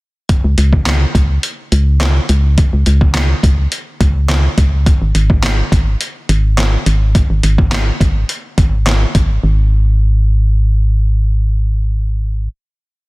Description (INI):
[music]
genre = dance-pop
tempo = 105 BPM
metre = 4/4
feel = straight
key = unclear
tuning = A4 = 440 Hz
[part]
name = trip hop sampler-style drum kit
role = drums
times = 0.3-9.3 s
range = handclaps, hi-hat, kick drum, snare drum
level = -14 LUFS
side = equal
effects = none
[part]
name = organ-like FM bass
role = bass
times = 0.4-12.5 s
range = Ab1 to Db2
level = -12 LUFS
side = equal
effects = sidechain pumping
[sound]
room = little or no reverb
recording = dense, heavily limited modern master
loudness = -11 LUFS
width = side -22 dB against mid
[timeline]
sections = 0.3-9.4 chorus; 9.4-11.7 final note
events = none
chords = none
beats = | 0.29 0.86 1.44 2.01 | 2.58 3.15 3.72 4.29 | 4.86 5.43 6.01 6.58 | 7.15 7.72 8.29 8.86 | 9.44 10.01 10.58 11.15